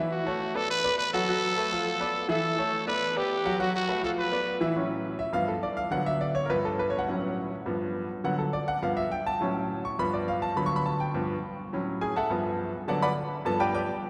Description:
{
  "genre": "latin",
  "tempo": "207 BPM",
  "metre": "4/4",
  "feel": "straight",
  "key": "unclear",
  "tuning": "A4 = 440 Hz",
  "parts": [
    { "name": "bright grand piano", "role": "accompaniment", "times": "0.0-13.9 s", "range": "G2 to C#6", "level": "-30 LUFS", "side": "equal", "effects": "none" },
    { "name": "growling trumpet", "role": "melody", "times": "0.1-4.6 s", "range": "F#4 to B4", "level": "-31 LUFS", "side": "equal", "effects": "none" }
  ],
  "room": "wet cathedral reverb, RT60 4.5 s",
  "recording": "recorded in a church or concert hall",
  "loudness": "-28 LUFS",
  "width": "mono",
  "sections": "0.0-4.8 A section; 4.8-14.0 B section",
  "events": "grand piano solo 4.8-14.0",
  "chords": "0.1 A6; 0.7 Bm7; 1.3 F#mmaj7; 1.9 Dm69; 2.4 A; 3.0 G; 3.6 F#mmaj7; 4.2 Dm69; 4.8 A6; 5.3 G7; 5.9 D6; 6.5 G7; 7.1 A6; 7.7 G7; 8.2 D6; 8.8 G7; 9.4 A6; 10.0 G7; 10.6 D6; 11.1 G7; 11.7 A6; 12.3 G7; 12.9 D6; 13.5 G7"
}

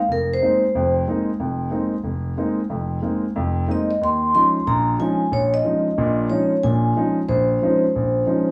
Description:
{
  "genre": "jazz",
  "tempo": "183 BPM",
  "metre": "4/4",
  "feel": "swing 62% on 8ths",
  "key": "Bb minor",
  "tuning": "A4 = 440 Hz",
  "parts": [
    { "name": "vibraphone with soft mallets", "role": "melody", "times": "0.0-0.9, 3.7-8.5 s", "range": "Bb4 to C6", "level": "-22 LUFS", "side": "equal", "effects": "plate reverb" },
    { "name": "warm concert grand piano", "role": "accompaniment", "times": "0.1-8.5 s", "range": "F1 to Eb4", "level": "-23 LUFS", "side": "equal", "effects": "none" }
  ],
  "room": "moderate club reverb, RT60 0.7 s",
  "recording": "small room ambience",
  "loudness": "-20 LUFS",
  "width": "mono",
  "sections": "0.0-8.5 A section",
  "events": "none",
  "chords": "0.0 Bb9sus4; 4.0 Eb9sus4"
}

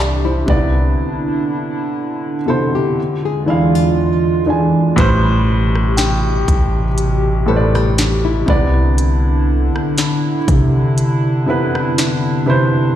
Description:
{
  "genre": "contemporary R&B",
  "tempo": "60 BPM",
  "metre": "4/4",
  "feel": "swing 54% on 16ths",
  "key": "A minor",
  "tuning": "A4 = 440 Hz",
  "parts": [
    { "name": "dark baby grand piano", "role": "accompaniment", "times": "0.0-13.0 s", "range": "A2 to G#5", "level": "-17 LUFS", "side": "right 1 dB", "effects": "none" },
    { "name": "hollow soft pad", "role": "sustained chords", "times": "0.0-13.0 s", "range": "E2 to G4", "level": "-20 LUFS", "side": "right 1 dB", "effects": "chorus, sidechain pumping" },
    { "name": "nylon-string guitar", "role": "arpeggios", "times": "0.0-8.7 s", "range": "E4 to A4", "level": "-23 LUFS", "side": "left 7 dB", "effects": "tape echo" },
    { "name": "long sustained 808-style bass", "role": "bass", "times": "0.0-12.9 s", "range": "A1 to C3", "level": "-16 LUFS", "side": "equal", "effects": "none" },
    { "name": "trap drum kit", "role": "drums", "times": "0.5-12.2 s", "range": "hi-hat, kick drum, rim click, snare drum", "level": "-19 LUFS", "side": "equal", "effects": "none" },
    { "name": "glassy synth bell", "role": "texture", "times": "6.0-8.5 s", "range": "G5", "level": "-28 LUFS", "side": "left 3 dB", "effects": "chorus, tape echo" }
  ],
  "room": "light reverb",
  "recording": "played on a big sound system in a bare room, large studio reverb",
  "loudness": "-13 LUFS",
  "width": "side -11 dB against mid",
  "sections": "0.0-5.0 A section; 5.0-13.0 B section",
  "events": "none",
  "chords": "0.5 Cmaj9; 3.0 E7b9; 5.0 Am9; 8.5 Cmaj9"
}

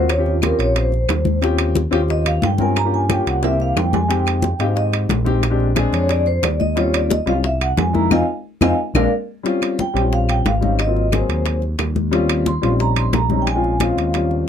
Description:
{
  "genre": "Afro-Cuban jazz",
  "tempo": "179 BPM",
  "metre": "4/4",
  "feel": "straight",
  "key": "Eb mixolydian",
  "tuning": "A4 = 439 Hz",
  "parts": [
    { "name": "vibraphone with medium mallets", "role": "melody", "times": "0.0-14.3 s", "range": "F4 to C6", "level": "-22 LUFS", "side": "right 2 dB", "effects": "none" },
    { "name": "warm grand piano", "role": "accompaniment", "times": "0.0-14.5 s", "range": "Gb3 to Bb4", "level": "-21 LUFS", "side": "left 4 dB", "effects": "none" },
    { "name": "smooth gliding synth bass", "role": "bass", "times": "0.0-14.4 s", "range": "Ab1 to Ab2", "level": "-20 LUFS", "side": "equal", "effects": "none" },
    { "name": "bongos", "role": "percussion", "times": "0.1-14.5 s", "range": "none", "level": "-27 LUFS", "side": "left 5 dB", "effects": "none" },
    { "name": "claves", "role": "percussion", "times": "0.1-14.0 s", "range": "none", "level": "-29 LUFS", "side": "left 6 dB", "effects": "none" },
    { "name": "congas", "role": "percussion", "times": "0.1-14.5 s", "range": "none", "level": "-24 LUFS", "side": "left 5 dB", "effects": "none" },
    { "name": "timbales", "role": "percussion", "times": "0.1-14.3 s", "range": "none", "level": "-26 LUFS", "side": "right 9 dB", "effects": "none" }
  ],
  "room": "moderate booth ambience, RT60 0.2 s",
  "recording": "none",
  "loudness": "-16 LUFS",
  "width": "side -8 dB against mid",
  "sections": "0.0-9.4 A section; 9.4-14.5 B section",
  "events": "vibraphone solo 0.0-9.4; drum fill 3.4-4.1, 8.8-9.4; band accent 8.1-9.4",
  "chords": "0.1 Eb13; 2.8 Gm7b5; 3.4 C7; 4.1 Fm7; 5.4 Bb13; 6.8 Eb13; 7.4 C7alt; 8.1 Fm7; 8.8 Bb7; 9.4 Eb13; 10.8 Ab13; 12.1 Eb13; 13.5 Bbm7"
}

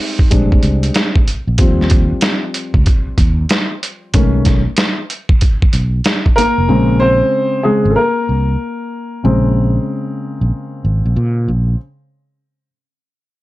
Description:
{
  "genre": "hip hop, jazz-hop",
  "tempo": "94 BPM",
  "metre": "4/4",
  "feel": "swing 64% on 16ths",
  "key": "Bb minor",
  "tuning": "A4 = 444 Hz",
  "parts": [
    { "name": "dark upright piano", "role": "accompaniment", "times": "0.0-11.8 s", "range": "Db3 to C5", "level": "-16 LUFS", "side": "left 1 dB", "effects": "none" },
    { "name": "trip hop sampler-style drum kit", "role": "drums", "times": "0.0-6.6 s", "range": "hi-hat, kick drum, snare drum", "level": "-13 LUFS", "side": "equal", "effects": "none" },
    { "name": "fretless electric bass", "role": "bass", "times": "0.3-11.7 s", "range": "F1 to Bb2", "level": "-15 LUFS", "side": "equal", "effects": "none" }
  ],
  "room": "light reverb",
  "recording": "none",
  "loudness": "-12 LUFS",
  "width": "side -17 dB against mid",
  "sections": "0.0-11.8 A section",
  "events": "upright piano solo 0.0-11.8",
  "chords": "0.3 Bb13; 1.6 Eb69; 4.1 B13; 6.7 Bbm9"
}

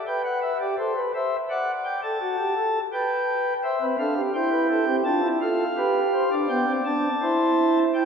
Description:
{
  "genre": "classical, baroque-style 4-part fugue for pipe organ",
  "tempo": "84 BPM",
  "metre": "3/4",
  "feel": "straight",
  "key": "C major",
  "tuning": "A4 = 439 Hz",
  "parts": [
    { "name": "pipe organ, flutes", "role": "solo", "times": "0.0-8.1 s", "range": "B3 to A5", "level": "-21 LUFS", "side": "equal", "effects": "none" }
  ],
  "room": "wet church reverb, RT60 3.1 s",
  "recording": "heard from further back in the room",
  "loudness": "-21 LUFS",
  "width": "side -6 dB against mid",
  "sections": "0.0-8.1 A section",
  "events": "none",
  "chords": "0.0 G; 0.8 Am; 1.5 D; 2.9 G/B; 3.6 C; 5.1 Dm; 5.8 G7; 7.2 C/E"
}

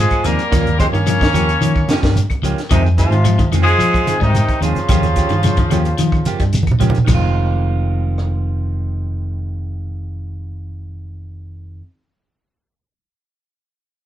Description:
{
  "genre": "afrobeat",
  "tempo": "110 BPM",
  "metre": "4/4",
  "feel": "straight",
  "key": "F minor",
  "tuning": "A4 = 441 Hz",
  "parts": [
    { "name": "bright horn section", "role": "melody", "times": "0.0-6.5 s", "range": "Eb3 to Db5", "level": "-19 LUFS", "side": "left 1 dB", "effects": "none" },
    { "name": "raspy tenor saxophone", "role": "second line", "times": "0.0-6.5 s", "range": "C3 to Bb3", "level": "-25 LUFS", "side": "right 4 dB", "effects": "none" },
    { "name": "fingered electric bass", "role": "bass", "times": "0.0-11.8 s", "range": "F1 to F3", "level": "-18 LUFS", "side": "equal", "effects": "none" },
    { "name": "compact cocktail drum kit", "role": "drums", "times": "0.1-8.3 s", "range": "crash cymbal, hi-hat, kick drum, rim click, snare drum", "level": "-20 LUFS", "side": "equal", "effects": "none" },
    { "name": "claves", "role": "percussion", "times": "0.1-7.2 s", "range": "none", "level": "-35 LUFS", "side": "left 5 dB", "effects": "none" },
    { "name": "shekere", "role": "percussion", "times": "0.1-7.2 s", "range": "none", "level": "-26 LUFS", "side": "left 1 dB", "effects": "none" },
    { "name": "clean electric guitar", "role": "stabs", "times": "0.2-11.9 s", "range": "Eb3 to Ab4", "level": "-25 LUFS", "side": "right 6 dB", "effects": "none" },
    { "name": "clean electric guitar", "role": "arpeggios", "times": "0.3-7.2 s", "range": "Eb3 to G3", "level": "-23 LUFS", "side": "left 5 dB", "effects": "spring reverb" },
    { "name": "congas", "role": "percussion", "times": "0.7-7.2 s", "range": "none", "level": "-20 LUFS", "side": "right 2 dB", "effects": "none" }
  ],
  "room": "moderate studio reverb, RT60 0.5 s",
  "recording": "band playing live in one room",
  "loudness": "-13 LUFS",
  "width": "side -12 dB against mid",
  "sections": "0.0-7.1 A section; 7.1-11.5 B section",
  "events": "drum fill 6.5-7.1",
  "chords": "0.0 Fm7; 0.5 Eb9; 2.7 Fm7; 4.9 Eb9; 7.1 Fm7"
}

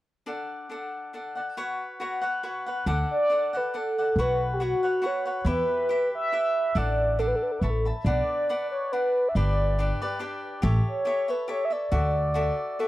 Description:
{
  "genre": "mexican folk, mariachi",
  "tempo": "139 BPM",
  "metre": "3/4",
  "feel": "straight",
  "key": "D major",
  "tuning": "A4 = 441 Hz",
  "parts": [
    { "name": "cavaquinho", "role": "accompaniment", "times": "0.3-12.9 s", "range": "D4 to B5", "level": "-31 LUFS", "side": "left 2 dB", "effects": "none" },
    { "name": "upright bass", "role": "bass", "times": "2.9-12.5 s", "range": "G1 to E2", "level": "-26 LUFS", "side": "equal", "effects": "none" },
    { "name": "mellow horn-like synth lead", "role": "melody", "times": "3.1-12.9 s", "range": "F#4 to E5", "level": "-25 LUFS", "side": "equal", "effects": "chorus" }
  ],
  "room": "little or no reverb",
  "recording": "dry, close 1970s-style studio recording",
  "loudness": "-24 LUFS",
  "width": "side -16 dB against mid",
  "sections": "0.3-2.9 A section; 2.9-12.9 B section",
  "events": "none",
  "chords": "0.3 D; 1.6 Bsus2; 2.9 D; 4.2 Bsus2; 5.5 Em; 6.8 D/A; 7.6 Aadd9; 8.1 Bm; 9.4 G; 10.6 A7; 11.9 Dadd9"
}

